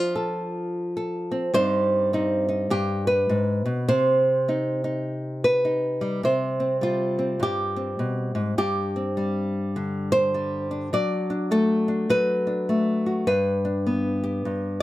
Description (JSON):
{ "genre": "folk, solo fingerstyle acoustic guitar", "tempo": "102 BPM", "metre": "4/4", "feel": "swing 62% on 8ths", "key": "C minor", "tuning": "A4 = 441 Hz", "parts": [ { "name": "nylon-string guitar", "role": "solo", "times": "0.0-14.8 s", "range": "G2 to D5", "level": "-22 LUFS", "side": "equal", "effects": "none" } ], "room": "light reverb", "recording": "none", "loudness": "-22 LUFS", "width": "side -16 dB against mid", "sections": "0.0-6.2 A section; 6.2-14.8 B section", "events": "none", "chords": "0.0 F; 1.5 Cm/G; 2.7 G; 3.9 Cm; 6.2 C5; 8.6 Gsus4; 10.9 D/F#; 13.3 G" }